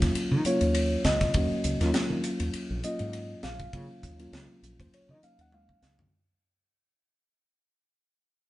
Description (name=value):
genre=electric jazz fusion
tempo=101 BPM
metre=4/4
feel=swing 55% on 16ths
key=Eb minor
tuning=A4 = 439 Hz
part: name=mellow reed electric piano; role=accompaniment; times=0.0-6.1 s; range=Gb3 to Gb5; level=-29 LUFS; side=left 1 dB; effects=none
part: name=woody fretless electric bass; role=bass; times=0.0-6.1 s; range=Bb1 to Eb3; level=-30 LUFS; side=equal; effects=none
part: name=crisp fusion drum kit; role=drums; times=0.0-6.1 s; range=hi-hat, kick drum, ride cymbal, snare drum, toms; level=-31 LUFS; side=equal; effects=none
room=moderate stone room reverb, RT60 1.2 s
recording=band playing live in one room, nothing above 10.5 kHz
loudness=-25 LUFS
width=side -17 dB against mid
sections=0.0-6.1 A section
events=fade-out 0.0-6.1; drum fill 5.5-6.1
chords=0.0 Ebm9